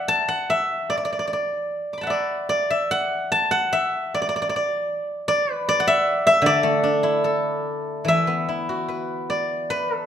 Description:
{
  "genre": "chinese traditional, Chinese solo plucked strings",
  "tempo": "75 BPM",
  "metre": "2/4",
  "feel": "rubato",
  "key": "D gong mode",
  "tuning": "A4 = 440 Hz",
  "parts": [
    { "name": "steel-string zither", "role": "solo", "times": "0.0-10.1 s", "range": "D3 to D6", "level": "-20 LUFS", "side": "equal", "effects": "none" }
  ],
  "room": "moderate recital hall reverb, RT60 1.5 s",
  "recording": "minimal, uncompressed stereo recording",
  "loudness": "-20 LUFS",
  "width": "side -9 dB against mid",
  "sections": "0.0-8.1 A section; 8.1-10.1 B section",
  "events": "none",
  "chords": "none",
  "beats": "| 0.07 0.88 | 1.70 2.51 | 3.31 4.11 | 4.89 5.67 | 6.45 7.25 | 8.07 8.89 | 9.70"
}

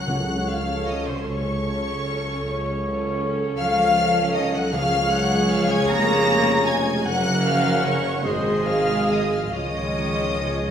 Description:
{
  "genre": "classical, slow romantic movement for symphony orchestra",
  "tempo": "45-52 BPM (dotted quarters)",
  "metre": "12/8",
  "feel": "rubato",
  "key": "unclear",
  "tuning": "A4 = 438 Hz",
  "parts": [
    { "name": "warm studio violin section", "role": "melody", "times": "0.0-10.7 s", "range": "C6 to Bb6", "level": "-28 LUFS", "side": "left 2 dB", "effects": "none" },
    { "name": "mellow hollow concert flute", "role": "second line", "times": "0.0-10.5 s", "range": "C5 to Bb5", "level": "-27 LUFS", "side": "left 1 dB", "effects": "none" },
    { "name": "warm chamber violin section", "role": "second line", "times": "0.0-10.7 s", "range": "C5 to Bb5", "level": "-30 LUFS", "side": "left 1 dB", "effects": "none" },
    { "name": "warm chamber viola section", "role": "accompaniment", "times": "0.0-10.7 s", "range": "Ab3 to Bb4", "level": "-28 LUFS", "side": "right 2 dB", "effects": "none" },
    { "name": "clear trombone section", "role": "sustained chords", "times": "0.0-10.7 s", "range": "Db3 to Bb3", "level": "-31 LUFS", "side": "right 2 dB", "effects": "none" },
    { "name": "mellow French horn section", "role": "sustained chords", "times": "0.0-10.7 s", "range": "Ab3 to A4", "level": "-31 LUFS", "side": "left 2 dB", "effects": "none" },
    { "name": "warm trumpet section", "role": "stabs", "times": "0.0-10.7 s", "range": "Db5 to Gb5", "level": "-29 LUFS", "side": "left 2 dB", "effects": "none" },
    { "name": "dark chamber cello section", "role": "bass", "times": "0.0-10.7 s", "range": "C3 to Bb3", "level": "-29 LUFS", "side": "right 1 dB", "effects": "none" },
    { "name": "dark chamber double bass section", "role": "bass", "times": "0.1-10.7 s", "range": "F1 to Db2", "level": "-31 LUFS", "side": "right 1 dB", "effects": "none" },
    { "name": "mellow tuba", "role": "bass", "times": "0.1-10.7 s", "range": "F1 to Db2", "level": "-29 LUFS", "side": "right 1 dB", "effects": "none" },
    { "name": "timpani", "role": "percussion", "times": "0.1-10.7 s", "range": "Db3", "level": "-34 LUFS", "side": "equal", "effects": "none" }
  ],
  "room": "wet recital hall reverb, RT60 1.4 s",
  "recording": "recorded in a church or concert hall",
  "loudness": "-19 LUFS",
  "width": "side -8 dB against mid",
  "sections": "0.0-10.7 A section",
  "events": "timpani fill 9.5-10.7",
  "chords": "0.1 Gbm/Db; 4.7 Db; 7.1 Gb; 8.2 Ab; 9.5 Db",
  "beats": "| 0.08 1.26 2.42 3.58 | 4.73 5.89 7.06 8.25 | 9.53"
}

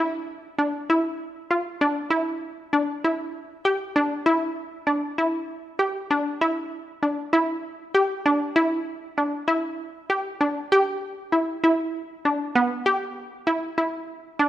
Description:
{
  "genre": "contemporary instrumental, contemporary",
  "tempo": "195 BPM (eighths)",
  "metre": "7/8",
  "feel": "straight",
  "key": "E phrygian",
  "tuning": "A4 = 440 Hz",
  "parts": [
    { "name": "resonant blip pluck", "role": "solo", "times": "0.0-14.5 s", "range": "B3 to G4", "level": "-22 LUFS", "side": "equal", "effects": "chorus" }
  ],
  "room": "moderate concert hall reverb, RT60 1.9 s",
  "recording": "none",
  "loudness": "-22 LUFS",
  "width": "side -13 dB against mid",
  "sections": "0.0-10.7 A section; 10.7-14.5 B section",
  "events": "none",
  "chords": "none",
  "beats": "0.27 0.57 0.88 1.19 1.49 1.80 | 2.11 2.42 2.72 3.03 3.34 3.65 3.95 | 4.26 4.57 4.87 5.18 5.49 5.79 6.10 | 6.41 6.72 7.02 7.33 7.64 7.95 8.25 | 8.56 8.87 9.17 9.48 9.79 10.10 10.40 | 10.71 11.02 11.32 11.63 11.94 12.24 12.55 | 12.86 13.17 13.47 13.78 14.09 14.40"
}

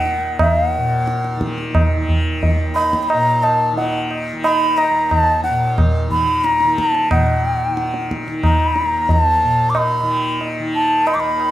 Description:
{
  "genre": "indian classical, Hindustani",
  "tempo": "90 BPM",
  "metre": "5/4",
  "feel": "straight",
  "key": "Eb raga todi",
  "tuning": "A4 = 443 Hz",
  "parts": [
    { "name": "bansuri", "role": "melody", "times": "0.0-11.5 s", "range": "Gb5 to D6", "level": "-17 LUFS", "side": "equal", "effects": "slapback echo" },
    { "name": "tanpura", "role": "drone", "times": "0.0-11.5 s", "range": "Eb2 to Eb3", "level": "-22 LUFS", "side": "left 1 dB", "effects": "none" },
    { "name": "tabla", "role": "percussion", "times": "0.1-11.5 s", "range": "none", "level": "-19 LUFS", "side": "right 1 dB", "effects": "none" }
  ],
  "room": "light reverb",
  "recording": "close, detailed microphones",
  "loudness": "-15 LUFS",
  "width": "side -13 dB against mid",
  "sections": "0.0-7.1 A section; 7.1-11.5 B section",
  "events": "speeding up 0.0-11.5",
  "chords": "none",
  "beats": "| 0.40 1.07 1.75 2.42 3.10 | 3.77 4.44 5.11 5.78 6.45 | 7.11 7.77 8.44 9.10 9.76 | 10.41 11.07"
}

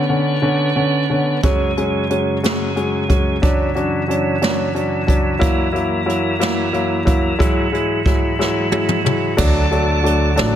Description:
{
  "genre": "six-eight pop ballad",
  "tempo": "60 BPM (dotted quarters)",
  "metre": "6/8",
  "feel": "straight",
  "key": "unclear",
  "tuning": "A4 = 440 Hz",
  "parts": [
    { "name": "warm concert grand piano", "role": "accompaniment", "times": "0.0-10.6 s", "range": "D3 to E4", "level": "-18 LUFS", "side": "left 1 dB", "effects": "none" },
    { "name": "tonewheel organ", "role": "sustained chords", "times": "0.0-10.6 s", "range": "F#2 to F#4", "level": "-22 LUFS", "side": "right 2 dB", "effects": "slow rotary speaker" },
    { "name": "jazz brush drum kit", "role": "drums", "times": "1.4-10.5 s", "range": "crash cymbal, hi-hat, kick drum, snare drum, toms", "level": "-19 LUFS", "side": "right 1 dB", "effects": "none" },
    { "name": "upright bass", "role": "bass", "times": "9.4-10.6 s", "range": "A1 to D2", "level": "-18 LUFS", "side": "right 1 dB", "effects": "none" }
  ],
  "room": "light reverb, small room ambience",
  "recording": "none",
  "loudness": "-15 LUFS",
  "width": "side -10 dB against mid",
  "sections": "0.0-9.4 A section; 9.4-10.6 B section",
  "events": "drum fill 8.4-9.4",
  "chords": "0.0 Bmadd9; 1.4 F#sus2; 3.4 Dmaj7/F#; 5.4 F#7; 7.4 Eadd9; 9.4 D",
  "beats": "0.43 | 1.44 2.44 | 3.43 4.42 | 5.41 6.40 | 7.39 8.39 | 9.39 10.39"
}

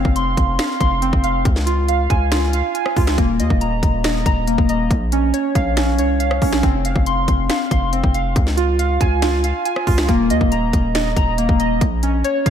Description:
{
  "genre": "hip hop, trap",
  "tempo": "139 BPM",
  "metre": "4/4",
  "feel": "half-time",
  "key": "Bb minor",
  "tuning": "A4 = 440 Hz",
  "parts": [
    { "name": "warbly lo-fi synth keys", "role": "arpeggios", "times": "0.0-12.5 s", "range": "Bb3 to C6", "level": "-19 LUFS", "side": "equal", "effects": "chorus, low-pass filter, ping-pong delay" },
    { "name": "hard-hitting 808-style bass", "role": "bass", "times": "0.0-12.5 s", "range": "Eb1 to Eb2", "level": "-20 LUFS", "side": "equal", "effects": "none" },
    { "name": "trap drum kit", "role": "drums", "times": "0.0-12.5 s", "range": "finger snaps, hi-hat, kick drum, rim click, snare drum", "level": "-20 LUFS", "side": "equal", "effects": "none" }
  ],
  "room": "moderate plate reverb, RT60 1.8 s",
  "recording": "dreamy mix soaked in reverb",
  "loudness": "-15 LUFS",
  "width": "side -9 dB against mid",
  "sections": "0.0-12.5 A section",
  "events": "none",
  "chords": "0.0 F5; 1.5 Db; 3.2 Eb5; 4.9 Bbm; 6.6 F5; 8.4 Db; 10.1 Eb5; 11.8 Bbm",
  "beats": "0.16 0.59 1.02 | 1.45 1.88 2.32 2.75 | 3.18 3.61 4.04 4.47 | 4.91 5.34 5.77 6.20 | 6.63 7.06 7.50 7.93 | 8.36 8.79 9.22 9.65 | 10.09 10.52 10.95 11.38 | 11.81 12.24"
}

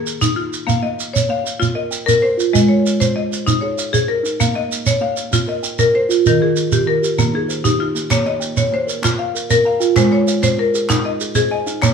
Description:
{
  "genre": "southern african traditional, mbira-style interlocking cycle",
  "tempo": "129 BPM (dotted quarters)",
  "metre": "12/8",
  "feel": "straight",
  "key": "Bb dorian",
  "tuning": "A4 = 440 Hz",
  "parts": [
    { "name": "buzzing marimba with hard mallets", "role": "arpeggios", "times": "0.0-11.9 s", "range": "Eb3 to F5", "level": "-17 LUFS", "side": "left 4 dB", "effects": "none" },
    { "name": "shekere", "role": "percussion", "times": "0.1-11.9 s", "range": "none", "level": "-20 LUFS", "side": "right 5 dB", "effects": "none" },
    { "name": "buzzing kalimba", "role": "arpeggios", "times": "0.8-11.9 s", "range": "Eb3 to Bb5", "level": "-22 LUFS", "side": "right 8 dB", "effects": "none" },
    { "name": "group handclap", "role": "percussion", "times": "8.1-11.9 s", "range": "none", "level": "-28 LUFS", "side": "right 1 dB", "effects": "none" }
  ],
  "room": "wet large studio reverb, RT60 0.9 s",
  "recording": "band playing live in one room",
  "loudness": "-14 LUFS",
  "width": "side -6 dB against mid",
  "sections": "0.0-8.1 A section; 8.1-11.9 B section",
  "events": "none",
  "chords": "0.0 N.C.; 0.7 Bbm; 2.5 Ab; 4.4 Bbm; 6.3 Eb; 8.1 Bbm; 10.0 Ab",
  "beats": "0.21 | 0.68 1.15 1.61 2.08 | 2.54 3.00 3.47 3.93 | 4.40 4.86 5.33 5.79 | 6.26 6.72 7.18 7.65 | 8.11 8.58 9.04 9.50 | 9.97 10.43 10.89 11.36 | 11.82"
}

